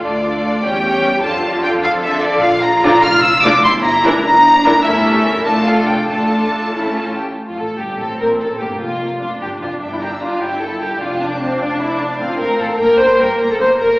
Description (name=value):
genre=quick classical-period movement for string orchestra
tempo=99 BPM (dotted quarters)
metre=6/8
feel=straight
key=D minor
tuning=A4 = 440 Hz
part: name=rich studio violin section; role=melody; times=0.0-14.0 s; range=F4 to F6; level=-16 LUFS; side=equal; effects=none
part: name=rich symphonic violin section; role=second line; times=0.0-14.0 s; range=C4 to D5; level=-18 LUFS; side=equal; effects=none
part: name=rich studio viola section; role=accompaniment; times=0.0-14.0 s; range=D3 to E4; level=-21 LUFS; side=equal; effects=none
part: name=dark studio double bass section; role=bass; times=0.0-13.9 s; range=F1 to F2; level=-28 LUFS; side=equal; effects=none
part: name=rich studio cello section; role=bass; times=0.0-13.9 s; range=F2 to Bb4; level=-23 LUFS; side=right 1 dB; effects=none
room=wet recital hall reverb, RT60 1.7 s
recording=recorded in a church or concert hall, AM radio sound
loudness=-13 LUFS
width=side -22 dB against mid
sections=0.0-7.4 A section; 7.4-14.0 B section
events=none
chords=0.0 Dm; 0.6 C#dim/E; 1.2 Dm/F; 2.4 Bb; 3.6 Em7b5/G; 4.9 A7/G; 5.5 Dm/F; 6.1 Dm/A; 6.7 A; 7.4 Fadd9; 8.0 Am; 8.6 Bb; 9.8 Edim/G; 10.4 A7(no3)/G; 11.0 Dm/F; 12.2 F/A; 12.8 Gm